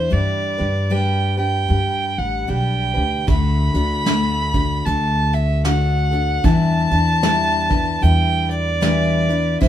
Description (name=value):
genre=acoustic folk duo or small band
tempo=76 BPM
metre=4/4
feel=swing 60% on 8ths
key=unclear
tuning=A4 = 438 Hz
part: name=warm fiddle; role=melody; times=0.0-9.7 s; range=C5 to B5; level=-21 LUFS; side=right 2 dB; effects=none
part: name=picked steel-string acoustic guitar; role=accompaniment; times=0.0-9.7 s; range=D3 to C5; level=-23 LUFS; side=left 4 dB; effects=none
part: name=upright bass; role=bass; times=0.0-9.7 s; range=A1 to G2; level=-20 LUFS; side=equal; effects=none
part: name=soft brush drum kit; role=drums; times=3.3-9.7 s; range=hi-hat, kick drum, snare drum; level=-20 LUFS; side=right 1 dB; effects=none
room=moderate studio reverb, RT60 0.6 s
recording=minimal, uncompressed stereo recording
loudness=-16 LUFS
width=side -11 dB against mid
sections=0.0-9.7 A section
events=none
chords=0.1 G; 3.3 D; 6.5 Em7